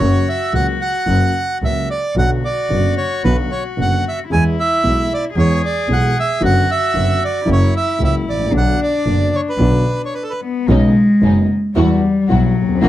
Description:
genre	tango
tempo	112 BPM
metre	4/4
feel	rubato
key	B minor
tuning	A4 = 440 Hz
part	bandoneon	melody	0.0-10.4 s	A4 to G#5	-19 LUFS	right 3 dB	none
part	warm cello	second line	0.0-12.9 s	F#3 to G#4	-20 LUFS	left 3 dB	none
part	dark baby grand piano	accompaniment	0.0-12.9 s	F#1 to G#4	-19 LUFS	equal	none
part	bright double bass	bass	0.0-12.9 s	F#1 to E2	-18 LUFS	right 1 dB	none
part	dark studio string section	stabs	10.7-12.9 s	G3 to F#4	-22 LUFS	equal	none
room	moderate club reverb, RT60 0.7 s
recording	dark, warm production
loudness	-14 LUFS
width	side -13 dB against mid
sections	0.0-10.7 A section; 10.7-12.9 B section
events	stop 10.1-10.7; cello solo 10.7-12.9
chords	0.0 F#; 2.2 Bm; 4.3 E; 6.4 Bm/F#; 7.5 F#; 8.5 Bm; 10.7 Badd9; 11.8 Emadd9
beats	| 0.02 0.54 1.08 1.62 | 2.17 2.71 3.25 3.78 | 4.31 4.84 5.36 5.89 | 6.42 6.94 7.47 8.00 | 8.53 9.06 9.60 10.14 | 10.69 11.22 11.76 12.29 | 12.82

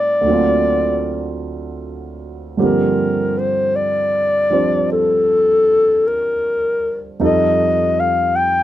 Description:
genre	jazz ballad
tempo	52 BPM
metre	4/4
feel	swing 68% on 8ths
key	unclear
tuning	A4 = 442 Hz
part	breathy clarinet	melody	0.0-8.6 s	A4 to G5	-15 LUFS	left 2 dB	none
part	dark grand piano	accompaniment	0.0-8.6 s	D2 to C5	-20 LUFS	right 3 dB	none
room	light reverb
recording	close, detailed microphones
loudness	-14 LUFS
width	side -13 dB against mid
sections	0.0-8.6 A section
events	none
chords	0.2 D7alt; 2.6 Gm11; 7.2 F9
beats	0.24 1.41 | 2.57 3.73 4.90 6.05 | 7.21 8.36

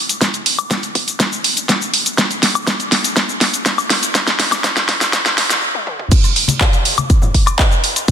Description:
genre	house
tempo	122 BPM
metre	4/4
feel	straight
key	none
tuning	none
part	pop drum kit	drums	0.1-8.1 s	cabasa, crash cymbal, handclaps, hi-hat, snare drum, toms, woodblock	-14 LUFS	equal	soft clipping on snare, small room reverb
part	electronic kick drum	drums	0.2-8.1 s	none	-14 LUFS	equal	high-pass filter on kick, small room reverb
part	woodblock and congas	percussion	6.2-8.1 s	none	-23 LUFS	left 4 dB	sidechain pumping on perc
room	moderate lush hall reverb, RT60 1.9 s, digital ambience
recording	dense, heavily limited modern master, high-pass filter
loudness	-13 LUFS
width	side -8 dB against mid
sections	0.0-6.1 A section; 6.1-8.1 B section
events	build-up 0.0-6.1; drum fill 0.0-5.6, 5.7-6.1; stop 5.6-6.1; drop 6.1-8.1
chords	none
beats	| 0.21 0.71 1.20 1.69 | 2.18 2.67 3.17 3.66 | 4.15 4.64 5.13 5.62 | 6.12 6.61 7.10 7.59 | 8.08

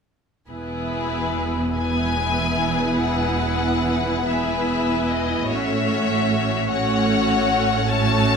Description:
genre	classical, slow romantic movement for string orchestra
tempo	46-51 BPM (dotted quarters)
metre	12/8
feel	rubato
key	E major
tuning	A4 = 440 Hz
part	rich chamber violin section	second line	0.5-8.4 s	F#4 to C#5	-25 LUFS	left 3 dB	none
part	rich symphonic viola section	accompaniment	0.5-8.4 s	A3 to E4	-23 LUFS	right 1 dB	none
part	rich chamber double bass section	bass	0.5-8.4 s	E1 to A1	-28 LUFS	right 5 dB	none
part	warm studio cello section	bass	0.5-8.4 s	E2 to A2	-28 LUFS	right 4 dB	none
part	rich studio violin section	melody	1.8-8.4 s	D#5 to A5	-25 LUFS	left 5 dB	none
room	wet recital hall reverb, RT60 1.4 s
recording	minimal, uncompressed stereo recording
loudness	-19 LUFS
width	side -6 dB against mid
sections	0.5-8.4 A section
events	none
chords	0.5 E; 5.5 F#m/A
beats	| 0.50 1.77 3.01 4.29 | 5.51 6.70 7.89

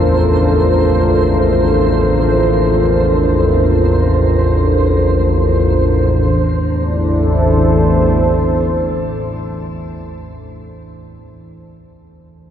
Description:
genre	dark ambient drone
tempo	free time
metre	none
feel	none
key	A phrygian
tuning	A4 = 438 Hz
part	dark analog pad	sustained chords	0.0-10.6 s	D4 to C5	-16 LUFS	equal	chorus, shimmer reverb
part	gamelan-type bossed gongs	arpeggios	0.0-10.2 s	D2 to E3	-33 LUFS	equal	none
part	analog drone	drone	0.0-10.2 s	A1 to E2	-15 LUFS	equal	chorus
part	flickering grainy texture	texture	0.0-6.3 s	C5	-23 LUFS	right 3 dB	built-in reverb, shimmer reverb
room	wet cathedral reverb, RT60 6.3 s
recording	cassette tape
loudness	-11 LUFS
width	side -9 dB against mid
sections	0.0-6.3 A section; 6.3-10.6 B section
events	none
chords	0.0 Bbsus2/A; 6.3 Am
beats	free time

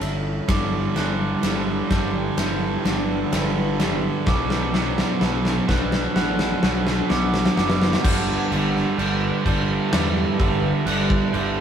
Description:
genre	post-rock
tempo	64 BPM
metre	4/4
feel	straight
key	G major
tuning	A4 = 440 Hz
part	deep dark ambient pad	sustained chords	0.0-11.6 s	G3 to B5	-31 LUFS	equal	chorus, built-in reverb
part	electric guitar through a small old amp	arpeggios	0.0-8.0 s	B2 to B4	-31 LUFS	left 4 dB	vibrato effect
part	glockenspiel with rubber mallets	arpeggios	0.0-11.6 s	D6 to G6	-32 LUFS	right 2 dB	none
part	fuzz picked electric bass	bass	0.0-11.6 s	F#1 to E2	-27 LUFS	left 1 dB	overdrive
part	big rock drum kit	drums	0.0-11.6 s	crash cymbal, kick drum, ride cymbal, snare drum	-23 LUFS	left 1 dB	none
part	cranked stack guitar	riff	0.5-11.6 s	G2 to B3	-24 LUFS	right 4 dB	overdrive
room	moderate studio reverb, RT60 0.5 s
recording	band playing live in one room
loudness	-19 LUFS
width	side -8 dB against mid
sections	0.0-8.0 A section; 8.0-11.6 B section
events	build-up 0.0-8.0; drum fill 0.0-8.0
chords	0.5 G6; 4.3 Bm; 8.0 G6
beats	| 0.49 1.44 2.38 3.33 | 4.27 5.22 6.16 7.10 | 8.04 8.99 9.93 10.87

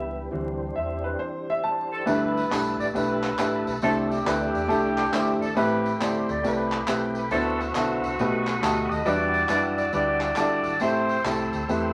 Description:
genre	uptempo gospel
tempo	137 BPM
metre	4/4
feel	swing 65% on 8ths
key	G major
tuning	A4 = 440 Hz
part	warm upright piano	accompaniment	0.0-11.9 s	G2 to A5	-28 LUFS	equal	none
part	dark French horn section	sustained chords	0.0-2.0 s	G3 to E4	-42 LUFS	equal	none
part	tonewheel organ	sustained chords	0.0-11.9 s	E3 to E6	-37 LUFS	equal	slow rotary speaker, chorus vibrato
part	fingered electric bass	bass	0.0-11.9 s	G1 to F#2	-39 LUFS	equal	none
part	mellow horn section	melody	1.9-11.9 s	A3 to D#5	-29 LUFS	equal	none
part	tambourine and handclaps	percussion	2.1-11.8 s	none	-36 LUFS	equal	none
room	wet studio reverb, RT60 0.7 s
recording	vinyl crackle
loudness	-25 LUFS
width	mono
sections	0.0-2.1 A section; 2.1-11.9 B section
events	upright piano solo 0.0-2.1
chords	0.3 D9sus4; 2.1 G69; 3.8 C69; 5.6 Am9; 7.3 D13; 8.2 B7b13; 9.1 Em9; 10.8 Am7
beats	| 0.31 0.75 1.19 1.63 | 2.06 2.50 2.94 3.38 | 3.81 4.25 4.69 5.12 | 5.56 6.00 6.44 6.87 | 7.31 7.75 8.19 8.62 | 9.06 9.50 9.94 10.37 | 10.81 11.25 11.69

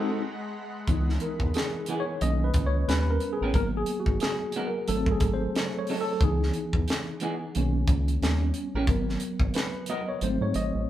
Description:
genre	R&B, neo-soul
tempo	90 BPM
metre	4/4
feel	swing 58% on 16ths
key	unclear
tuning	A4 = 441 Hz
part	tine electric piano	accompaniment	0.0-10.9 s	D#3 to D#5	-29 LUFS	equal	overdrive, fast stereo tremolo
part	shimmering ambient pad	sustained chords	0.0-0.9 s	G#3 to F#5	-39 LUFS	left 1 dB	chorus, built-in reverb
part	round analog bass	bass	0.9-10.9 s	G#1 to G#2	-28 LUFS	equal	none
part	tight funk drum kit	drums	0.9-10.7 s	hi-hat, kick drum, snare drum	-28 LUFS	equal	none
part	electric guitar through a small old amp	second line	1.9-10.0 s	E3 to A#4	-34 LUFS	right 2 dB	spring reverb
room	moderate studio reverb, RT60 0.8 s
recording	band playing live in one room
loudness	-24 LUFS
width	side -13 dB against mid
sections	0.9-10.9 A section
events	band accent 0.0-0.9; tine electric piano solo 0.9-10.9; kick muted 10.2-10.9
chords	0.2 Emaj7/G#; 0.9 C#m9; 2.2 Bmaj7; 2.9 D#7b13; 3.5 G#m9; 4.9 G#7b9; 6.2 C#m9; 7.5 Bmaj7; 8.2 D#7b13; 8.9 G#m9; 10.2 G#7b9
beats	0.21 | 0.88 1.54 2.21 2.88 | 3.54 4.21 4.88 5.54 | 6.21 6.88 7.54 8.21 | 8.88 9.54 10.21 10.88

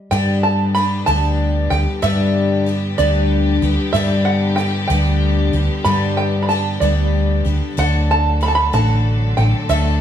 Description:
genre	folk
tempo	63 BPM (dotted quarters)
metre	6/8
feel	straight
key	G major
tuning	A4 = 441 Hz
part	fingerpicked steel-string acoustic guitar	accompaniment	0.0-1.1 s	none	barely audible	none	none
part	open-back banjo	melody	0.1-10.0 s	D5 to B5	-20 LUFS	right 3 dB	none
part	picked twelve-string acoustic guitar	accompaniment	0.1-10.0 s	G2 to A4	-21 LUFS	left 6 dB	none
part	warm chamber string section	sustained chords	0.1-10.0 s	D3 to A4	-26 LUFS	equal	none
part	hollow-body short-scale fingered electric bass	bass	0.1-10.0 s	A1 to G2	-17 LUFS	equal	none
room	wet stone room reverb, RT60 1.3 s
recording	band playing live in one room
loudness	-14 LUFS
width	side -9 dB against mid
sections	0.1-10.0 A section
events	none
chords	0.1 G; 7.8 D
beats	| 0.12 1.08 | 2.03 2.99 | 3.95 4.90 | 5.86 6.82 | 7.78 8.74 | 9.70

